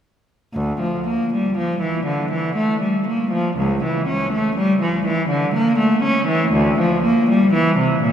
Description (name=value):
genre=classical, baroque-style suite movement for unaccompanied cello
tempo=60 BPM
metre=3/4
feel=rubato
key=D minor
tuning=A4 = 435 Hz
part: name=rich cello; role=solo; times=0.5-8.1 s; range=C#2 to C#4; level=-16 LUFS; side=equal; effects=none
room=wet church reverb, RT60 3.9 s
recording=none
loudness=-16 LUFS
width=side -9 dB against mid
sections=0.5-8.1 A section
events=none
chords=none